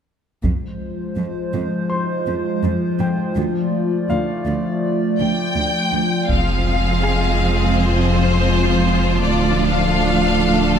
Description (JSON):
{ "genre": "cinematic, hybrid orchestral and electronic film score", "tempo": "82 BPM", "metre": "4/4", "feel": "straight", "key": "F dorian", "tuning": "A4 = 440 Hz", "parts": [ { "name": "hollow soft pad", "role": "sustained chords", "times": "0.7-10.8 s", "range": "F3 to F5", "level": "-21 LUFS", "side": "left 1 dB", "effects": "chorus, phaser" }, { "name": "rich symphonic cello section", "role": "bass", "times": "0.4-10.8 s", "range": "D2 to F2", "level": "-23 LUFS", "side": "right 3 dB", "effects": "none" }, { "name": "taiko ensemble", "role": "drums", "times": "0.4-1.9, 6.3-7.7 s", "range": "none", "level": "-24 LUFS", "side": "equal", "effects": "none" }, { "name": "clear grand piano", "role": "texture", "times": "1.9-9.2 s", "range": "Ab4 to C6", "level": "-30 LUFS", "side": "left 1 dB", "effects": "ping-pong delay" }, { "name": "clear symphonic violin section", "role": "melody", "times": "5.2-10.8 s", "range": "C5 to G5", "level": "-22 LUFS", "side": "left 2 dB", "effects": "none" }, { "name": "bright symphonic violin section", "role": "second line", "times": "6.3-10.8 s", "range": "F4 to A4", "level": "-25 LUFS", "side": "left 2 dB", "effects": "none" }, { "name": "rich symphonic viola section", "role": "accompaniment", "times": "6.3-10.8 s", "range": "F3 to D4", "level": "-24 LUFS", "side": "right 1 dB", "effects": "none" }, { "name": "sub bass with octave", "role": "bass", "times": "6.3-10.8 s", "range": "D1 to F1", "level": "-21 LUFS", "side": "equal", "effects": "none" } ], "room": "wet concert hall reverb, RT60 2.0 s", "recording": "none", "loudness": "-16 LUFS", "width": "side -8 dB against mid", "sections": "0.4-6.3 A section; 6.3-10.8 B section", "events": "none", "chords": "0.4 Fm; 3.4 Dm; 6.3 Fm; 9.2 Dm", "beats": "| 0.44 1.17 1.90 2.63 | 3.36 4.09 4.83 5.56 | 6.29 7.02 7.75 8.48 | 9.22 9.95 10.68" }